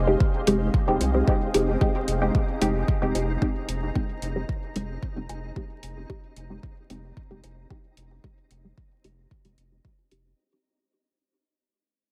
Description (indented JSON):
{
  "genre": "dub techno",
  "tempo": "112 BPM",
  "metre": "4/4",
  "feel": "straight",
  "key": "F minor",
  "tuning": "A4 = 440 Hz",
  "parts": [
    { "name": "deep dark ambient pad", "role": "sustained chords", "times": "0.0-10.4 s", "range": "Ab4 to Bb5", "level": "-39 LUFS", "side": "equal", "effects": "chorus, built-in reverb, sidechain pumping" },
    { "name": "round analog bass", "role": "bass", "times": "0.0-10.3 s", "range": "F1 to C2", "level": "-31 LUFS", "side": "equal", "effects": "sidechain pumping" },
    { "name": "flickering grainy texture", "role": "texture", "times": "0.0-10.4 s", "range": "C4 to C5", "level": "-41 LUFS", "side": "equal", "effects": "built-in reverb, sidechain pumping" },
    { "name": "filtered dub chord stab", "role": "stabs", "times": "0.1-10.3 s", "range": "Ab3 to G4", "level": "-28 LUFS", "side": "equal", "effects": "phaser, sidechain pumping, dub echo" },
    { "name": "electronic kick drum", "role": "drums", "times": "0.2-10.0 s", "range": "none", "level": "-27 LUFS", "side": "equal", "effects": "overdrive" },
    { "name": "electronic hi-hat", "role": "drums", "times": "0.5-10.2 s", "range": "none", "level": "-36 LUFS", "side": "equal", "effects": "overdrive" },
    { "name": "filtered dub chord stab", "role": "riff", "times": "1.0-10.1 s", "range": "F4 to Ab5", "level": "-43 LUFS", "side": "equal", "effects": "none" }
  ],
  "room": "moderate huge ambient reverb, RT60 3.9 s",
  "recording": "vinyl crackle",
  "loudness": "-25 LUFS",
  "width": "mono",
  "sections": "0.0-10.4 A section",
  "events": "fade-out 0.0-10.4",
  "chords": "0.0 Fm7",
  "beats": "0.20 0.74 1.27 | 1.81 2.35 2.88 3.42 | 3.95 4.49 5.03 5.56 | 6.10 6.63 7.17 7.70 | 8.24 8.78 9.31 9.85"
}